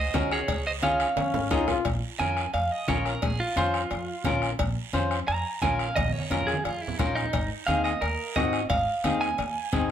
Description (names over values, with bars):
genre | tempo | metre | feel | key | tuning
latin, cumbia | 175 BPM | 4/4 | straight | Bb minor | A4 = 440 Hz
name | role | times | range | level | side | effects
clean electric guitar | melody | 0.0-9.9 s | Eb4 to Bb5 | -28 LUFS | right 3 dB | spring reverb, slapback echo
upright bass | bass | 0.0-9.9 s | Ab1 to F2 | -32 LUFS | equal | none
clean electric guitar | accompaniment | 0.1-9.9 s | C4 to C5 | -29 LUFS | left 3 dB | none
bombo | percussion | 0.1-9.9 s | none | -32 LUFS | left 3 dB | none
congas | percussion | 0.1-9.9 s | none | -35 LUFS | right 2 dB | none
cowbell and timbales | percussion | 0.1-9.9 s | none | -36 LUFS | right 3 dB | none
guiro | percussion | 0.1-9.9 s | none | -40 LUFS | right 9 dB | none
bright trombone | second line | 1.2-1.9 s | Db4 to F4 | -29 LUFS | left 7 dB | none
room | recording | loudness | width
moderate studio reverb, RT60 0.6 s | none | -24 LUFS | side -9 dB against mid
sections
0.0-1.9 A section; 1.9-9.9 B section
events
drum fill 0.8-1.9, 6.0-7.3; clean electric guitar solo 1.9-9.9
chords
0.5 Db; 1.9 Bbm; 7.3 Ab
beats
0.14 | 0.49 0.83 1.17 1.51 | 1.86 2.20 2.54 2.88 | 3.23 3.57 3.91 4.25 | 4.60 4.94 5.28 5.62 | 5.97 6.31 6.65 6.99 | 7.33 7.68 8.02 8.36 | 8.70 9.05 9.39 9.73